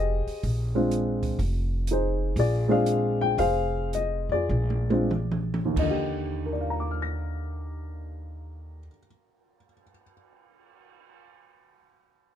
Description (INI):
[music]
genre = jazz piano trio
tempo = 88-125 BPM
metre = 4/4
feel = swing 66% on 8ths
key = Eb major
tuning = A4 = 440 Hz
[part]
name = dark upright piano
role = melody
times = 0.0-10.1 s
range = Eb2 to Bb6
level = -26 LUFS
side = left 1 dB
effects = plate reverb
[part]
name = upright bass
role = bass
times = 0.0-8.9 s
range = F1 to F2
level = -28 LUFS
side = equal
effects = none
[part]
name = open jazz drum kit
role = drums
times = 0.3-11.1 s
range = crash cymbal, cymbal swell, hi-hat, kick drum, toms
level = -34 LUFS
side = right 3 dB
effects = none
[sound]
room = light reverb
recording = dark, warm production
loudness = -24 LUFS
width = side -10 dB against mid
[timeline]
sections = 0.0-5.8 A section; 5.8-11.2 B section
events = slowing down 1.4-5.8; drum fill 4.5-5.8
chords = 0.4 Bb7; 1.4 Fm7; 2.4 Bb7; 3.4 Fm; 4.5 Bb7; 5.8 Ebmaj7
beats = 0.43 0.91 | 1.39 1.87 2.36 2.86 | 3.38 3.93 4.50 5.11 | 5.77 6.45 7.13 7.81 | 8.50 9.18 9.86 10.54